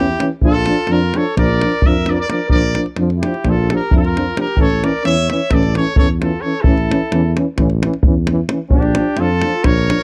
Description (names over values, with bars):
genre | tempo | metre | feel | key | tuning
balkan folk, Balkan brass band | 261 BPM (eighths) | 9/8 | straight | unclear | A4 = 442 Hz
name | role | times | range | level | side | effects
bright trumpet | melody | 0.0-10.0 s | G4 to E5 | -24 LUFS | equal | none
mellow flugelhorn | second line | 0.0-10.0 s | D4 to C#5 | -25 LUFS | equal | none
warm euphonium | accompaniment | 0.0-10.0 s | C#4 to D4 | -24 LUFS | equal | none
warm trombone | accompaniment | 0.0-10.0 s | E3 to F3 | -26 LUFS | equal | none
dark tuba | bass | 0.0-9.9 s | A1 to F2 | -20 LUFS | equal | none
davul | percussion | 0.2-10.0 s | none | -19 LUFS | equal | none
room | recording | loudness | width
small room ambience | dry, close 1970s-style studio recording | -16 LUFS | mono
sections
0.0-10.0 A section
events
none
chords
0.4 Bb; 4.6 A; 8.7 Bb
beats
0.19 | 0.42 0.66 0.89 1.12 1.35 1.58 1.81 2.04 2.27 | 2.50 2.74 2.97 3.20 3.43 3.66 3.89 4.12 4.35 | 4.58 4.81 5.04 5.27 5.50 5.73 5.96 6.19 6.42 | 6.65 6.88 7.11 7.34 7.57 7.80 8.03 8.26 8.48 | 8.71 8.94 9.17 9.40 9.63 9.86